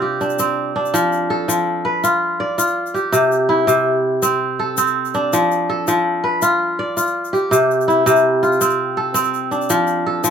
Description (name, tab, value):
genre	west african traditional, West African string and xylophone music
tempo	110 BPM (dotted quarters)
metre	12/8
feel	straight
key	F lydian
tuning	A4 = 437 Hz
part	kora	arpeggios	0.0-10.3 s	C3 to D5	-15 LUFS	equal	none
part	egg shaker	percussion	0.2-10.3 s	none	-25 LUFS	left 9 dB	none
room	wet studio ambience, RT60 0.5 s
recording	band playing live in one room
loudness	-15 LUFS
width	side -7 dB against mid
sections	0.9-10.3 A section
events	none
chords	0.0 C5; 0.9 F; 3.1 C; 5.3 F; 7.5 C; 9.7 F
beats	0.39 | 0.94 1.49 2.04 2.58 | 3.13 3.68 4.23 4.77 | 5.32 5.87 6.42 6.96 | 7.51 8.06 8.61 9.15 | 9.70 10.25